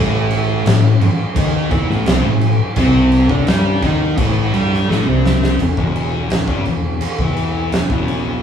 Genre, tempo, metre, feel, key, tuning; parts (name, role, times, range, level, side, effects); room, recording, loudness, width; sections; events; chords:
stoner and doom metal; 85 BPM; 4/4; straight; E minor; A4 = 435 Hz
thick fuzz guitar; riff; 0.0-8.4 s; E2 to G4; -19 LUFS; left 6 dB; distortion
thick fuzz guitar; riff; 0.0-5.6 s; A2 to G4; -18 LUFS; right 4 dB; distortion
fingered electric bass; bass; 0.0-8.4 s; E1 to G2; -20 LUFS; right 1 dB; overdrive
oversized low-tuned drum kit; drums; 0.3-8.2 s; crash cymbal, kick drum, snare drum; -19 LUFS; right 1 dB
wet large studio reverb, RT60 0.9 s; band playing live in one room, studio reverb; -13 LUFS; side -8 dB against mid
0.0-5.6 A section; 5.6-8.4 B section
drum fill 4.9-5.6
0.0 A5; 5.6 Em